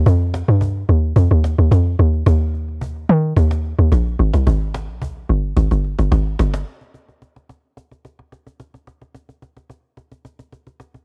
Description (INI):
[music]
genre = amapiano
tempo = 109 BPM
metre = 4/4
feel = straight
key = unclear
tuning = A4 = 441 Hz
[part]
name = hollow log drum bass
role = bass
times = 0.0-6.6 s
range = G1 to Eb3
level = -17 LUFS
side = equal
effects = none
[part]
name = cajon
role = drums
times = 0.1-11.0 s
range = none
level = -31 LUFS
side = equal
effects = cassette tape
[sound]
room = small room ambience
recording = home recording on cassette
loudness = -17 LUFS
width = mono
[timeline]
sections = 0.0-6.7 A section; 6.7-11.0 B section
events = drop 0.0-6.7; drum fill 5.6-6.7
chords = none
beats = | 0.06 0.61 1.17 1.72 | 2.27 2.82 3.37 3.92 | 4.47 5.02 5.57 6.12 | 6.67 7.22 7.77 8.32 | 8.87 9.42 9.97 10.52